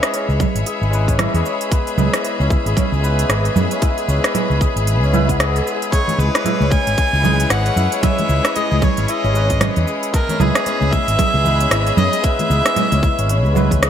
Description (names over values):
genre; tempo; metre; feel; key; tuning
organic downtempo; 114 BPM; 4/4; swing 59% on 16ths; C# minor; A4 = 440 Hz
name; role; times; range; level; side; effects
barky tine electric piano; accompaniment; 0.0-13.9 s; G#3 to B4; -25 LUFS; left 3 dB; sidechain pumping, ping-pong delay
rich studio string section; sustained chords; 0.0-13.9 s; E4 to B5; -26 LUFS; left 2 dB; sidechain pumping
santur; arpeggios; 0.0-13.9 s; G#3 to G#4; -25 LUFS; left 2 dB; ping-pong delay
organic electronic drum kit; drums; 0.0-13.9 s; congas, hi-hat, rim click, shaker; -20 LUFS; right 4 dB; overdrive, gated reverb
mellow fretless electric bass; bass; 0.3-13.9 s; G#1 to F#2; -18 LUFS; equal; sidechain pumping
electronic kick drum; drums; 0.4-13.8 s; none; -18 LUFS; equal; overdrive
bright kamancheh; melody; 5.9-13.8 s; G#4 to G#5; -20 LUFS; right 1 dB; digital delay
congas and bongos; percussion; 6.1-13.8 s; none; -27 LUFS; left 4 dB; none
room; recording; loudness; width
light reverb; bright 1980s-style digital production; -14 LUFS; side -9 dB against mid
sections
0.0-13.9 A section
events
none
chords
0.0 C#m7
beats
0.14 0.66 1.19 | 1.72 2.24 2.77 3.29 | 3.82 4.35 4.87 5.40 | 5.93 6.45 6.98 7.50 | 8.03 8.56 9.08 9.61 | 10.14 10.66 11.19 11.72 | 12.24 12.77 13.29 13.82